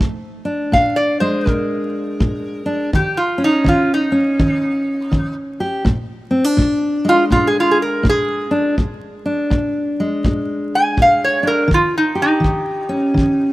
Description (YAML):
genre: acoustic country blues, solo or duo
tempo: 82 BPM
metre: 4/4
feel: swing 64% on 8ths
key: Bb mixolydian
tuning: A4 = 440 Hz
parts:
  - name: fingerpicked steel-string acoustic guitar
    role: accompaniment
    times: 0.0-13.5 s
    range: Bb2 to G4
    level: -18 LUFS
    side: equal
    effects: none
  - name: kick drum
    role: drums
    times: 0.0-13.4 s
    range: none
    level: -20 LUFS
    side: equal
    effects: none
  - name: metal-body resonator slide guitar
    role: melody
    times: 0.7-13.5 s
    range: Eb4 to Ab5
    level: -16 LUFS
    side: right 1 dB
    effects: none
room: light reverb, small room reverb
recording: rough home demo mix, vinyl crackle, faint mains hum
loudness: -15 LUFS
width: side -17 dB against mid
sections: 0.0-13.5 A section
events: none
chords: 0.0 Bb7; 2.9 Eb7(no3); 5.9 Bb7; 11.7 Eb7